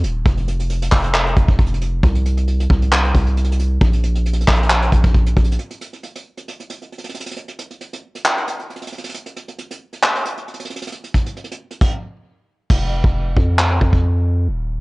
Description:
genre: hip hop, trap.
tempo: 135 BPM.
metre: 4/4.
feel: half-time.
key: unclear.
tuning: A4 = 438 Hz.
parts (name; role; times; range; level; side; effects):
long sustained 808-style bass; bass; 0.0-5.6, 12.7-14.8 s; Eb1 to F2; -17 LUFS; equal; none.
vintage brush drum kit; drums; 0.0-14.0 s; crash cymbal, handclaps, hi-hat, kick drum; -18 LUFS; equal; none.
room: little or no reverb.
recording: worn, warbling old tape, cassette tape, warbly pitch drift, nothing above 11.0 kHz.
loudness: -15 LUFS.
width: side -24 dB against mid.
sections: 0.0-5.6 A section; 5.6-12.7 B section; 12.7-14.8 C section.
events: hi-hats muted 12.7-14.8.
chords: none.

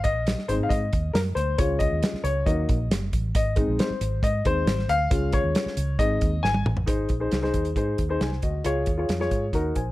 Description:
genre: uptempo 1960s-style soul.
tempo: 136 BPM.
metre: 4/4.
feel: straight.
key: Ab mixolydian.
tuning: A4 = 440 Hz.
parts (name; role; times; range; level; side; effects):
dark grand piano; accompaniment; 0.0-9.9 s; Gb3 to Ab5; -26 LUFS; left 2 dB; none.
vintage muted fingered electric bass; bass; 0.0-9.9 s; Gb1 to Ab2; -27 LUFS; right 1 dB; none.
warm soul drum kit; drums; 0.0-9.9 s; hi-hat, kick drum, snare drum, toms; -26 LUFS; right 1 dB; none.
room: studio reverb.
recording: none.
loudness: -22 LUFS.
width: side -17 dB against mid.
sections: 0.0-6.9 A section; 6.9-9.9 B section.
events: grand piano solo 0.0-6.9; drum fill 6.4-6.9.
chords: 0.0 Ab; 1.6 Db; 2.5 Ebm; 3.4 Ab; 5.1 Db; 6.0 Ab; 8.6 Db.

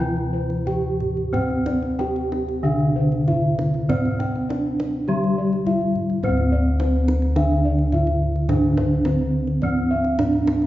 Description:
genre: Javanese gamelan.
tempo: 90-106 BPM.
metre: 4/4.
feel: straight.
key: unclear.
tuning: A4 = 440 Hz.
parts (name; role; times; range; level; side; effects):
gamelan-type bronze metallophone; melody; 0.0-10.7 s; C4-40c to G4-20c; -24 LUFS; right 2 dB; none.
gamelan-type bronze metallophone; accompaniment; 0.0-10.7 s; D3 to C4-40c; -24 LUFS; left 1 dB; none.
gamelan-type bossed gongs; arpeggios; 0.0-10.5 s; C5-40c to G5-20c; -29 LUFS; left 2 dB; none.
gamelan-type bossed gongs; bass; 0.0-10.7 s; D2 to C5-40c; -25 LUFS; left 1 dB; none.
kendang; percussion; 0.2-10.7 s; none; -29 LUFS; right 1 dB; none.
room: wet recital hall reverb, RT60 1.7 s.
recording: heard from further back in the room, nothing above 7.5 kHz.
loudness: -19 LUFS.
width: side -14 dB against mid.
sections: 0.0-6.2 A section; 6.2-10.7 B section.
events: none.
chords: none.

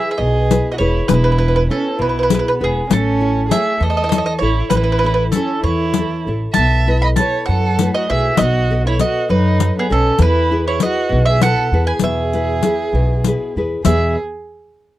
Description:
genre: italian folk, Italian serenade.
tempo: 66 BPM (dotted quarters).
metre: 6/8.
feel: straight.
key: E major.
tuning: A4 = 440 Hz.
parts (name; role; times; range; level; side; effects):
bowl-back mandolin; melody; 0.0-14.2 s; G#4 to B5; -20 LUFS; right 2 dB; none.
dark violin; second line; 0.0-14.1 s; B3 to E5; -22 LUFS; right 4 dB; none.
nylon-string guitar; accompaniment; 0.0-14.2 s; E2 to D#5; -21 LUFS; left 2 dB; none.
upright bass; bass; 0.2-14.2 s; E1 to F#2; -18 LUFS; equal; none.
riq; percussion; 0.5-14.1 s; none; -18 LUFS; left 8 dB; none.
room: little or no reverb.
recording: dry, close 1970s-style studio recording.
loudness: -14 LUFS.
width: side -15 dB against mid.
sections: 0.0-13.9 A section; 13.9-15.0 B section.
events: none.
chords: 0.0 E; 2.9 A; 6.5 B7sus4; 8.4 B7; 10.2 E.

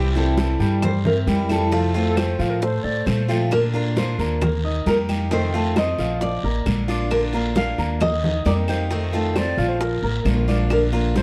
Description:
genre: latin, Cuban son and guajira.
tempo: 134 BPM.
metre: 4/4.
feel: straight.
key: Bb major.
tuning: A4 = 441 Hz.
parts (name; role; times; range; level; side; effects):
nylon-string guitar; melody; 0.0-11.2 s; G4 to F5; -27 LUFS; equal; tape echo.
picked steel-string acoustic guitar; accompaniment; 0.0-11.2 s; C3 to G4; -29 LUFS; equal; none.
dark baby grand piano; arpeggios; 0.0-11.2 s; Eb3 to Eb6; -29 LUFS; equal; none.
upright bass; bass; 0.0-11.2 s; A1 to Bb2; -25 LUFS; equal; none.
bongos; percussion; 0.1-11.2 s; none; -32 LUFS; equal; none.
congas; percussion; 0.2-11.2 s; none; -29 LUFS; equal; none.
guiro; percussion; 0.4-11.2 s; none; -38 LUFS; equal; none.
claves; percussion; 0.8-10.9 s; none; -38 LUFS; equal; none.
breathy mellow silver concert flute; second line; 1.9-3.5, 9.1-10.6 s; F4 to Eb5; -31 LUFS; equal; none.
room: small room reverb.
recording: dry, close 1970s-style studio recording.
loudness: -21 LUFS.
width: mono.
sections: 0.0-3.5 A section; 3.5-11.2 B section.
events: none.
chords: 0.0 C; 1.7 F; 3.5 Bb; 4.4 Eb; 5.3 F7; 6.2 Bb; 8.0 Eb; 8.9 F7; 9.8 Bb.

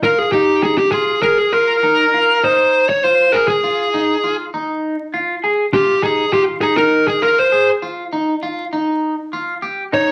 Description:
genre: progressive instrumental, progressive.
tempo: 200 BPM (eighths).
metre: 7/8.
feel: straight.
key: F minor.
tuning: A4 = 440 Hz.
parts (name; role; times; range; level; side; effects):
fuzz lead guitar; melody; 0.0-10.1 s; G4 to Db5; -16 LUFS; equal; distortion.
electric guitar at the edge of break-up; arpeggios; 0.0-10.1 s; Eb4 to Ab4; -22 LUFS; equal; phaser.
room: wet club reverb, RT60 0.9 s.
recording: vinyl crackle.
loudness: -16 LUFS.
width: mono.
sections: 0.0-10.1 A section.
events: lead electric guitar solo 0.0-10.1.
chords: 0.0 Fm7; 8.1 N.C..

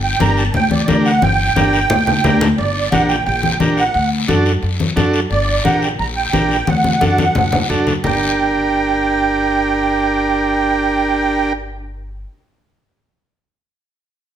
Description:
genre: latin, cumbia.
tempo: 176 BPM.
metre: 4/4.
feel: straight.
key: G harmonic minor.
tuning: A4 = 440 Hz.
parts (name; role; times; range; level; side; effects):
musette accordion; melody; 0.0-11.5 s; D5 to Bb5; -18 LUFS; right 4 dB; none.
upright bass; bass; 0.0-12.2 s; G1 to F#2; -20 LUFS; left 1 dB; none.
combo organ; accompaniment; 0.2-11.5 s; D4 to Bb4; -19 LUFS; right 1 dB; none.
congas; percussion; 0.2-8.1 s; none; -19 LUFS; left 3 dB; none.
guiro; percussion; 0.2-8.1 s; none; -26 LUFS; left 5 dB; none.
room: wet large studio reverb, RT60 1.2 s.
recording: none.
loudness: -13 LUFS.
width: side -10 dB against mid.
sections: 0.0-2.6 A section; 2.6-8.0 B section; 8.0-10.8 C section.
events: drum fill 1.2-2.6, 6.7-8.0.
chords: 0.0 Gm; 3.9 D; 5.3 Gm; 6.7 D; 8.0 Gm.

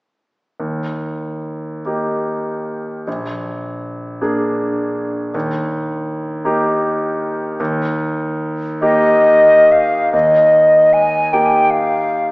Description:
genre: classical, romantic duo for flute and grand piano.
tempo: 43-55 BPM (dotted quarters).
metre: 6/8.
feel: rubato.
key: Eb major.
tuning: A4 = 440 Hz.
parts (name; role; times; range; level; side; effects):
bright concert grand piano; accompaniment; 0.6-12.3 s; Bb1 to Ab4; -19 LUFS; equal; none.
silver concert flute; melody; 8.8-12.3 s; Eb5 to Ab5; -10 LUFS; equal; none.
room: wet scoring stage reverb, RT60 1.6 s.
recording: heard from further back in the room, small speaker sound.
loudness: -13 LUFS.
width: side -25 dB against mid.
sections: 0.6-10.1 A section; 10.1-12.3 B section.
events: none.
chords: 0.6 Eb; 3.1 Bb7; 5.3 Eb.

